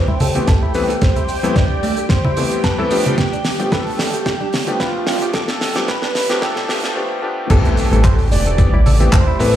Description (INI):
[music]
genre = nu-disco, nu disco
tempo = 111 BPM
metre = 4/4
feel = swing 53% on 16ths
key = A minor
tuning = A4 = 440 Hz
[part]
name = wide unison lead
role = melody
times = 0.0-9.6 s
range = F4 to D5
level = -23 LUFS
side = equal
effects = cassette tape, analog delay
[part]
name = clear electric grand piano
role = accompaniment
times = 0.0-9.6 s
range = E3 to B4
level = -21 LUFS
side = left 2 dB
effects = sidechain pumping, slapback echo
[part]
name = string machine, full ensemble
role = sustained chords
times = 0.0-9.6 s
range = G4 to G5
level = -28 LUFS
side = right 1 dB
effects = phaser, ensemble chorus, sidechain pumping
[part]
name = direct-recorded clean electric guitar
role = riff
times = 0.1-9.4 s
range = G3 to A5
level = -27 LUFS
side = right 3 dB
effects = lush chorus, vintage 12-bit sampler grit, low-pass filter, slapback echo
[part]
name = congas and maracas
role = percussion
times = 0.1-9.5 s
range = none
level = -24 LUFS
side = left 1 dB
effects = none
[part]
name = damped 70s drum kit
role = drums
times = 0.2-9.5 s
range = crash cymbal, handclaps, hi-hat, snare drum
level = -23 LUFS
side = right 2 dB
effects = none
[part]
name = electronic kick drum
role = drums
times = 0.5-9.2 s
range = none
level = -15 LUFS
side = equal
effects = none
[part]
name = chorused synth bass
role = bass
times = 7.5-9.6 s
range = E1 to A1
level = -15 LUFS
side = equal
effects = sidechain pumping
[part]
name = impact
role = sound effects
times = 7.5-9.6 s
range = none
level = -23 LUFS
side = equal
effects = none
[sound]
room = light reverb, small room ambience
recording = played on a big sound system in a bare room, large studio reverb, high-pass filter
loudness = -14 LUFS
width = side -11 dB against mid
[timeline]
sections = 0.0-7.5 A section; 7.5-9.6 B section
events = build-up 0.0-7.5; drum fill 0.0-7.0; filter sweep on clean electric guitar 0.0-7.5; filter sweep 0.0-7.5; break 7.0-7.5; drop 7.5-9.6; impact 7.5-9.6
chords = 0.0 Am7; 2.9 G7; 7.5 Am7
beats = 0.48 | 1.02 1.56 2.10 2.64 | 3.18 3.72 4.26 4.80 | 5.34 5.88 6.42 6.96 | 7.50 8.04 8.59 9.13